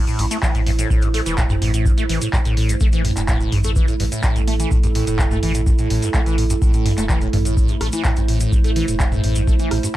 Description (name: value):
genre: acid house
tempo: 126 BPM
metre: 4/4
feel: straight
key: A minor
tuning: A4 = 439 Hz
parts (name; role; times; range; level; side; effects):
- warbly tape-like pad; sustained chords; 0.0-10.0 s; A3 to C5; -26 LUFS; right 6 dB; chorus, built-in reverb, sidechain pumping
- liquid acid bass; riff; 0.0-9.9 s; G2 to A3; -23 LUFS; left 1 dB; phaser, overdrive, lush chorus, sidechain pumping, tape echo
- booming analog drum machine; drums; 0.1-9.9 s; handclaps, hi-hat, rim click, toms; -25 LUFS; equal; none
- cabasa; percussion; 0.1-9.9 s; none; -33 LUFS; left 1 dB; none
- saturated sub bass; bass; 0.2-9.8 s; E1 to A1; -22 LUFS; equal; tube saturation, sidechain pumping
- electronic kick drum; drums; 0.4-9.6 s; none; -18 LUFS; equal; none
room: little or no reverb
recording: dark, warm production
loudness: -16 LUFS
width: side -14 dB against mid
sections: 0.0-10.0 A section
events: none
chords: 0.0 Am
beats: 0.43 0.90 1.38 | 1.86 2.33 2.81 3.29 | 3.76 4.24 4.71 5.19 | 5.67 6.14 6.62 7.09 | 7.57 8.05 8.52 9.00 | 9.47 9.95